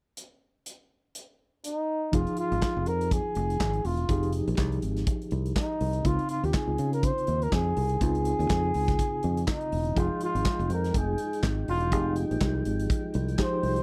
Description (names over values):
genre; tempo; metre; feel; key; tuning
disco; 123 BPM; 4/4; swing 56% on 16ths; F minor; A4 = 440 Hz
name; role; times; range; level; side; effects
modern studio drum kit; drums; 0.2-13.8 s; handclaps, hi-hat, kick drum, snare drum; -33 LUFS; equal; none
breathy flugelhorn; melody; 1.7-13.8 s; Eb4 to C5; -32 LUFS; equal; none
reed electric piano; accompaniment; 2.1-13.8 s; Db3 to Ab4; -35 LUFS; equal; overdrive, fast tremolo
fingered electric bass; bass; 2.1-13.8 s; E1 to Db3; -31 LUFS; equal; none
tonewheel organ; sustained chords; 10.0-13.8 s; F3 to G5; -38 LUFS; equal; overdrive, slow rotary speaker
room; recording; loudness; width
little or no reverb; none; -28 LUFS; mono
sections
0.2-2.1 A section; 2.1-13.8 B section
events
none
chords
0.2 N.C.; 2.1 Fm9; 6.0 Dbmaj9; 10.0 Fm9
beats
| 0.17 0.66 1.15 1.64 | 2.13 2.62 3.11 3.60 | 4.09 4.58 5.07 5.56 | 6.05 6.54 7.03 7.52 | 8.01 8.50 8.99 9.47 | 9.96 10.45 10.94 11.43 | 11.92 12.41 12.90 13.39